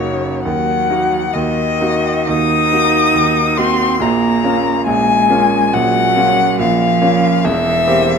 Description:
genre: classical, slow romantic movement for piano trio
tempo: 70 BPM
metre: 4/4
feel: rubato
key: Bb minor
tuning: A4 = 441 Hz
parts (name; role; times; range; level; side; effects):
- warm violin; melody; 0.0-8.2 s; Db5 to Eb6; -15 LUFS; left 7 dB; none
- rich cello; second line; 0.0-8.2 s; Db3 to Eb4; -18 LUFS; right 8 dB; none
- bright concert grand piano; accompaniment; 0.0-8.2 s; E1 to G4; -17 LUFS; right 1 dB; none
room: wet recital hall reverb, RT60 1.7 s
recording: none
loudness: -12 LUFS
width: side -6 dB against mid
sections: 0.0-8.2 A section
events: none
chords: 0.5 Ebm; 4.0 Bbm; 7.5 C7/E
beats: | 0.46 1.35 2.29 3.16 | 4.01 4.87 5.74 6.60 | 7.46

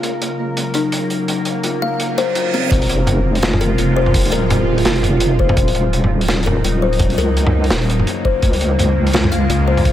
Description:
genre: half-time drum and bass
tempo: 168 BPM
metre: 4/4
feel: swing 58% on 16ths, half-time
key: F phrygian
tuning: A4 = 436 Hz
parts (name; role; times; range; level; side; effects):
- bowed-like drone; sustained chords; 0.0-9.9 s; C3 to Bb4; -21 LUFS; right 1 dB; built-in reverb, phaser, vintage 12-bit sampler grit, sidechain pumping
- kalimba; arpeggios; 0.0-9.8 s; C4 to F5; -21 LUFS; left 5 dB; dub echo
- crunchy breakbeat drum kit; drums; 0.0-9.9 s; hi-hat, snare drum, toms; -20 LUFS; equal; none
- pulsing gated texture; texture; 0.0-2.7 s; Bb3 to Bb4; -31 LUFS; right 3 dB; none
- reverse cymbal and impact; sound effects; 2.2-4.1 s; none; -26 LUFS; right 2 dB; none
- deep soft wobble bass; bass; 2.7-9.9 s; Eb1 to Db2; -17 LUFS; equal; chorus
- electronic kick drum; drums; 2.7-9.9 s; none; -16 LUFS; equal; none
room: light reverb, studio reverb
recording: none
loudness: -14 LUFS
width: side -12 dB against mid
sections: 0.0-2.7 A section; 2.7-9.9 B section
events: reverse cymbal 2.2-2.7; drop 2.7-9.9; impact 2.7-4.1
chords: 0.0 Gb; 2.7 Fm; 5.6 Ebm7; 8.4 Db6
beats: 0.21 0.57 0.93 | 1.28 1.64 2.00 2.36 | 2.71 3.07 3.43 3.79 | 4.14 4.50 4.86 5.21 | 5.57 5.93 6.29 6.64 | 7.00 7.36 7.71 8.07 | 8.43 8.79 9.14 9.50 | 9.86

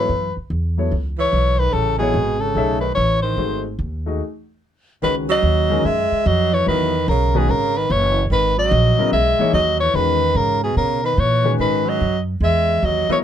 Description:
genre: modal jazz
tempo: 146 BPM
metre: 4/4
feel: swing 66% on 8ths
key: C# dorian from 5.0 s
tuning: A4 = 442 Hz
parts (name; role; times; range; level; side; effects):
- breathy soprano saxophone; melody; 0.0-13.2 s; Ab4 to E5; -19 LUFS; left 2 dB; none
- breathy tenor saxophone; second line; 0.0-13.2 s; B2 to G#3; -24 LUFS; right 8 dB; none
- warm grand piano; accompaniment; 0.0-13.2 s; C#3 to Fb5; -23 LUFS; left 4 dB; none
- upright bass; bass; 0.0-13.1 s; F#1 to B2; -21 LUFS; right 1 dB; none
room: light reverb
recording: none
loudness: -16 LUFS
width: side -10 dB against mid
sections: 0.0-5.0 A section; 5.0-13.2 B section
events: stop 4.2-5.0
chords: 0.0 Gbm11; 3.4 Ab7b9; 5.0 C#m11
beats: | 0.10 0.51 0.92 1.33 | 1.74 2.15 2.57 2.98 | 3.39 3.80 4.21 4.62 | 5.03 5.44 5.85 6.26 | 6.67 7.08 7.49 7.90 | 8.31 8.72 9.13 9.54 | 9.95 10.36 10.77 11.18 | 11.59 12.00 12.41 12.82

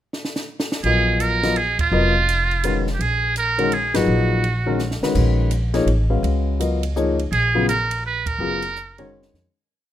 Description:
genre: modal jazz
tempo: 167 BPM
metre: 3/4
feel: swing 64% on 8ths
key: Bb phrygian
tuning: A4 = 436 Hz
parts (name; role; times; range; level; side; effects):
- compact cocktail drum kit; drums; 0.1-9.4 s; crash cymbal, hi-hat, kick drum, ride cymbal, snare drum; -30 LUFS; right 2 dB; none
- trumpet with metal mute; melody; 0.8-5.0, 7.3-9.1 s; F4 to Cb5; -21 LUFS; right 4 dB; none
- upright bass; bass; 0.8-9.5 s; F1 to F2; -22 LUFS; equal; none
- warm grand piano; accompaniment; 0.9-9.4 s; Bb2 to F5; -22 LUFS; left 4 dB; none
room: light reverb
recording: minimal, uncompressed stereo recording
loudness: -18 LUFS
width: side -12 dB against mid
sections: 0.0-0.8 pickup bar; 0.8-9.5 A section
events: drum fill 0.1-0.8, 4.8-5.2, 9.1-9.5; band accent 1.7, 3.9, 8.2; fade-out 7.7-9.5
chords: 0.0 N.C.; 0.8 Bb7(no3); 3.0 Ebm; 5.2 Bbm7; 7.3 Ebmadd9/Bb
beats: 0.13 0.49 | 0.84 1.20 1.56 | 1.92 2.28 2.64 | 3.00 3.36 3.72 | 4.08 4.44 4.80 | 5.16 5.52 5.88 | 6.24 6.59 6.96 | 7.31 7.67 8.03 | 8.39 8.75 9.11

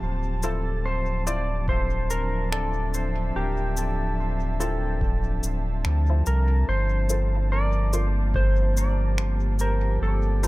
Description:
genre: ambient dub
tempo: 72 BPM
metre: 4/4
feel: swing 59% on 16ths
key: G dorian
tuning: A4 = 440 Hz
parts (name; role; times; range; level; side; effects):
- airy breathy pad; sustained chords; 0.0-10.5 s; F3 to A5; -33 LUFS; equal; chorus
- warm sub bass; bass; 0.0-10.5 s; D1 to D2; -24 LUFS; equal; none
- clean lap steel guitar; melody; 0.4-10.5 s; G4 to D5; -30 LUFS; equal; dub echo
- filtered dub chord stab; stabs; 0.4-10.5 s; E4 to C5; -39 LUFS; left 3 dB; none
- cabasa and finger snaps; drums; 0.4-10.5 s; none; -33 LUFS; left 1 dB; dub echo
- electronic kick drum; drums; 1.7-8.5 s; none; -27 LUFS; equal; overdrive
room: light reverb, small room ambience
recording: echo-heavy mix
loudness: -22 LUFS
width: side -19 dB against mid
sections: 0.0-6.7 A section; 6.7-10.5 B section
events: none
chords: 0.0 Dm9; 6.7 Gm11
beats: | 0.02 0.85 1.68 2.52 | 3.35 4.18 5.02 5.85 | 6.68 7.52 8.35 9.18 | 10.02

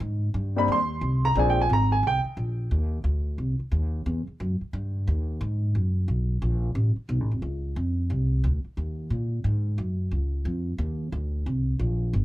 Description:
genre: jazz, big band swing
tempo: 178 BPM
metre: 4/4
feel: swing 62% on 8ths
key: unclear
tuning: A4 = 440 Hz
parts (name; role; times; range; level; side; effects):
- upright bass; bass; 0.0-12.2 s; F1 to Bb2; -25 LUFS; equal; none
- clear grand piano; accompaniment; 0.6-2.2 s; G3 to C6; -23 LUFS; right 1 dB; none
room: little or no reverb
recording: close, detailed microphones, lossy compression artefacts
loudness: -24 LUFS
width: side -15 dB against mid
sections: 0.0-2.7 A section; 2.7-12.2 B section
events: grand piano solo 0.0-2.7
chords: 0.0 Abmaj9#11; 1.4 Bb9; 2.7 Cmadd9; 4.1 Esus2; 4.7 Eb; 5.4 Abm9; 6.8 F; 7.4 Db; 8.1 Cm7; 9.5 Gbsus2; 10.1 Db; 10.8 Eb6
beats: | 0.01 0.35 0.69 1.02 | 1.36 1.70 2.04 2.38 | 2.71 3.05 3.39 3.73 | 4.06 4.40 4.74 5.08 | 5.41 5.75 6.09 6.42 | 6.76 7.10 7.43 7.77 | 8.11 8.44 8.78 9.12 | 9.45 9.79 10.12 10.46 | 10.80 11.13 11.47 11.80 | 12.14

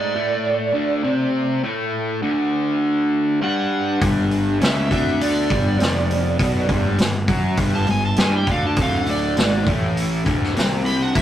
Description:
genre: blues rock power trio and southern rock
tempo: 101 BPM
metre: 4/4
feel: straight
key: unclear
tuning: A4 = 442 Hz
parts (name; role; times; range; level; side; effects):
- overdriven slide guitar; melody; 0.0-11.2 s; D5 to B5; -24 LUFS; right 3 dB; none
- smooth overdriven lead guitar; second line; 0.0-11.2 s; A3 to G4; -29 LUFS; right 2 dB; none
- distorted electric guitar; riff; 0.0-11.2 s; D2 to G4; -21 LUFS; left 1 dB; distortion
- fuzz picked electric bass; bass; 4.0-11.2 s; D1 to G2; -22 LUFS; equal; overdrive
- vintage drum kit; drums; 4.0-11.2 s; hi-hat, kick drum, snare drum; -22 LUFS; equal; none
room: moderate studio ambience, RT60 0.5 s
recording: rough rehearsal-room recording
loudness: -17 LUFS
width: side -11 dB against mid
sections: 0.0-11.2 A section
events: none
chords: 0.0 D7(no3); 4.0 G7; 6.4 G#dim; 8.8 D7(no3)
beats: 0.45 1.04 | 1.64 2.23 2.83 3.42 | 4.02 4.61 5.21 5.80 | 6.40 6.99 7.58 8.18 | 8.77 9.37 9.96 10.56 | 11.15

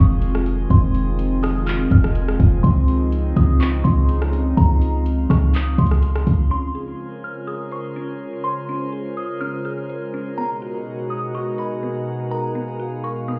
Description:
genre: hip hop, atmospheric cloud-rap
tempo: 124 BPM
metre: 4/4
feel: half-time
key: unclear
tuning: A4 = 440 Hz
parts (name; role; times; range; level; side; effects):
- delicate synth tine bell; melody; 0.0-13.4 s; Bb5 to F6; -33 LUFS; equal; chorus, phaser, low-pass filter, delay
- warbly tape-like pad; sustained chords; 0.0-13.4 s; Cb3 to F5; -28 LUFS; equal; chorus, built-in reverb, sidechain pumping
- warm 808-style bass; bass; 0.0-6.5 s; F1 to Db2; -21 LUFS; equal; none
- drifting glass-harmonics texture; texture; 0.0-13.4 s; Cb4 to C6; -38 LUFS; equal; chorus, built-in reverb
- smooth R&B drum kit; drums; 0.2-6.4 s; handclaps, hi-hat, kick drum, rim click; -20 LUFS; equal; none
- mallet-like synth pluck; arpeggios; 6.5-13.4 s; Cb4 to C5; -34 LUFS; equal; chorus, low-pass filter, delay
room: digital ambience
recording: heard muffled through a wall, club reverb, EQ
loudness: -20 LUFS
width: mono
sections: 0.0-6.5 A section; 6.5-13.4 B section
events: none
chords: 0.0 Fm7; 2.6 Dbmaj9; 6.5 Bbm9; 10.4 Abm9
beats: 0.22 | 0.70 1.19 1.67 2.15 | 2.64 3.12 3.60 4.09 | 4.57 5.06 5.54 6.03 | 6.51 6.99 7.48 7.96 | 8.44 8.93 9.41 9.90 | 10.38 10.86 11.35 11.83 | 12.31 12.80 13.28

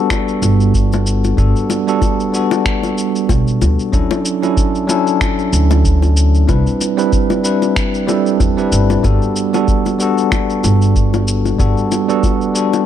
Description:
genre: sunset chillout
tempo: 94 BPM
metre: 4/4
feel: swing 56% on 16ths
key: G major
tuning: A4 = 439 Hz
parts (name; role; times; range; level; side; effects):
- bell-like tine electric piano; accompaniment; 0.0-12.9 s; F#3 to B4; -16 LUFS; moving between left 5 dB and right 8 dB; auto-pan, digital delay
- electronic finger snaps and shaker; drums; 0.1-12.8 s; none; -24 LUFS; left 1 dB; overdrive
- electronic kick drum; drums; 0.1-12.4 s; none; -18 LUFS; equal; overdrive
- bongos; percussion; 0.1-12.8 s; none; -22 LUFS; left 7 dB; none
- upright bass; bass; 0.4-11.7 s; G1 to E2; -14 LUFS; equal; none
room: light reverb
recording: dark, warm production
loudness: -12 LUFS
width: side -10 dB against mid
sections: 0.0-12.9 A section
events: none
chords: 0.0 Gmaj9; 3.9 Dmaj9; 6.5 Cmaj9; 9.0 Gmaj9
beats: 0.10 0.74 | 1.38 2.02 2.66 3.30 | 3.94 4.57 5.21 5.85 | 6.49 7.13 7.76 8.40 | 9.04 9.68 10.32 10.96 | 11.60 12.23

